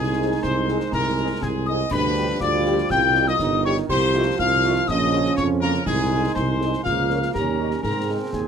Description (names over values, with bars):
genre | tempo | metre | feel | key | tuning
military-style march for wind band | 122 BPM | 2/4 | straight | Ab major | A4 = 442 Hz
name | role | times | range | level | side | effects
mellow trumpet section | melody | 0.0-8.5 s | Ab4 to G5 | -26 LUFS | left 1 dB | none
mellow piccolo | second line | 0.0-8.5 s | Ab5 to G6 | -25 LUFS | left 7 dB | none
warm euphonium | second line | 0.0-8.5 s | Db4 to Ab4 | -26 LUFS | right 5 dB | none
mellow trombone section | sustained chords | 0.0-8.5 s | Db3 to Db4 | -30 LUFS | right 2 dB | none
mellow tuba | bass | 0.0-8.5 s | G1 to Ab2 | -24 LUFS | right 3 dB | none
mellow French horn section | accompaniment | 0.2-8.2 s | G3 to Bb4 | -29 LUFS | left 3 dB | none
concert snare drum, concert bass drum and clash cymbals | drums | 0.4-8.5 s | none | -32 LUFS | left 2 dB | none
room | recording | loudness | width
moderate small room ambience, RT60 0.5 s | none | -19 LUFS | side -7 dB against mid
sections
0.0-8.5 A section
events
none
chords
0.0 Ab/C; 1.9 G7/D; 2.9 Cm; 3.9 F7/C; 4.9 Bbm; 5.9 Ab/C; 6.9 Bbm/Db; 7.3 Eb7; 7.8 Ab